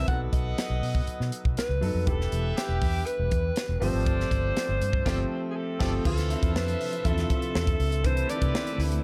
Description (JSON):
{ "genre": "polished 1980s jazz-funk pop", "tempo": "121 BPM", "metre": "4/4", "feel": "straight", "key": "unclear", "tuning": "A4 = 441 Hz", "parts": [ { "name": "breathy alto saxophone", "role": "melody", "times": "0.0-8.8 s", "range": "G4 to F#5", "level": "-34 LUFS", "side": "equal", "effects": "none" }, { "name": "clear grand piano", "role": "accompaniment", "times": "0.0-9.0 s", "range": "Eb3 to A4", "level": "-36 LUFS", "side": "equal", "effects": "subtle chorus" }, { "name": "vintage muted fingered electric bass", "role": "bass", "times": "0.0-9.0 s", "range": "E1 to C3", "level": "-30 LUFS", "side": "equal", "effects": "none" }, { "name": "clear horn section", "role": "second line", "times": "0.1-9.0 s", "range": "E4 to F#5", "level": "-42 LUFS", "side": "equal", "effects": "none" }, { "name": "crisp fusion drum kit", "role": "drums", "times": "0.1-9.0 s", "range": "crash cymbal, hi-hat, kick drum, snare drum", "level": "-31 LUFS", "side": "equal", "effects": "none" }, { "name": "warm studio string section", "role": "sustained chords", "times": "6.1-9.0 s", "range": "C3 to E5", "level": "-40 LUFS", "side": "equal", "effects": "none" } ], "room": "small room ambience", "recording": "dark, warm production", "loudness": "-27 LUFS", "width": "mono", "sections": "0.0-6.1 A section; 6.1-9.0 B section", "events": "band accent 5.1-6.1", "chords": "0.1 B7; 2.1 Em7; 3.8 G9sus4; 6.1 Dm9; 8.0 C69", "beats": "| 0.08 0.58 1.08 1.57 | 2.07 2.57 3.07 3.56 | 4.06 4.56 5.06 5.56 | 6.05 6.55 7.05 7.55 | 8.04 8.54" }